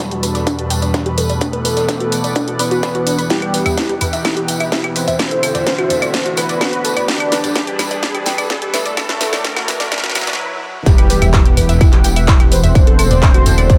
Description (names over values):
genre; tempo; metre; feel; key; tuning
melodic techno; 127 BPM; 4/4; straight; E minor; A4 = 440 Hz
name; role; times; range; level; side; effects
fat analog lead; melody; 0.0-13.8 s; F#3 to C5; -24 LUFS; equal; analog chorus, sidechain pumping, delay
lush unison pad; sustained chords; 0.0-13.8 s; E2 to F#5; -26 LUFS; equal; chorus, sidechain pumping
unison pluck; arpeggios; 0.0-13.8 s; D4 to B5; -25 LUFS; equal; sidechain pumping, dub echo
overtone-sweeping drone; drone; 0.0-13.8 s; E2 to B2; -31 LUFS; equal; chorus, built-in reverb, sidechain pumping
crunchy breakbeat drum kit; drums; 0.0-13.8 s; hi-hat, shaker, snare drum; -38 LUFS; equal; none
electronic kick drum; drums; 0.0-13.8 s; none; -15 LUFS; equal; distortion, overdrive, high-pass filter on kick
tambourine; percussion; 0.0-13.8 s; none; -31 LUFS; equal; none
riser, swell and impact; sound effects; 0.7-12.8 s; none; -29 LUFS; equal; none
techno drum kit; drums; 0.1-13.8 s; claves, handclaps, hi-hat, snare drum, toms; -22 LUFS; equal; overdrive, sidechain pumping on hats, sidechain pumping on perc, sidechain pumping on toms
dark detuned saw bass; bass; 10.9-13.8 s; E1; -18 LUFS; equal; sidechain pumping
room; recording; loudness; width
light reverb, small room ambience; high-pass filter; -15 LUFS; mono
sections
0.0-10.9 A section; 10.9-13.8 B section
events
build-up 0.0-10.9; filter sweep on synth arpeggio sound 0.0-10.9; filter sweep on analog synth lead 0.0-10.9; filter sweep 0.0-10.9; riser 0.7-10.4; drum fill 3.3-10.4; swell 9.9-10.9; break 10.4-10.9; drop 10.9-13.8; impact 10.9-12.8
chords
0.0 G/E; 1.4 Bm/E; 3.3 Em; 5.2 D/E; 7.1 G/E; 9.0 Bm/E; 10.9 Em; 12.8 D/E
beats
0.00 0.47 0.94 | 1.41 1.89 2.36 2.83 | 3.30 3.78 4.25 4.72 | 5.19 5.67 6.14 6.61 | 7.08 7.55 8.03 8.50 | 8.97 9.45 9.92 10.39 | 10.86 11.34 11.81 12.28 | 12.75 13.22 13.70